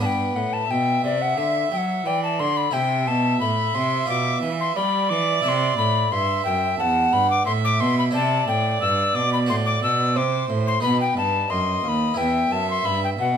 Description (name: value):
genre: classical, baroque-style sonata movement with continuo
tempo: 89 BPM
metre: 4/4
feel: straight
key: E minor from 8.1 s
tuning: A4 = 440 Hz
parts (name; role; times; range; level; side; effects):
- alto recorder; melody; 0.0-13.4 s; D5 to E6; -23 LUFS; left 6 dB; none
- warm violin; second line; 0.0-13.4 s; B4 to F#5; -26 LUFS; right 7 dB; none
- harpsichord; accompaniment; 0.0-13.4 s; D#2 to E5; -27 LUFS; equal; none
- rich cello; bass; 0.0-13.4 s; D#2 to G3; -26 LUFS; right 2 dB; none
room: light reverb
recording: minimal, uncompressed stereo recording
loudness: -19 LUFS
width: side -8 dB against mid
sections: 0.0-13.4 A section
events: none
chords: 0.0 G; 2.7 C; 4.1 G7/B; 5.4 C; 9.5 F#dim/A; 10.8 B; 12.2 Em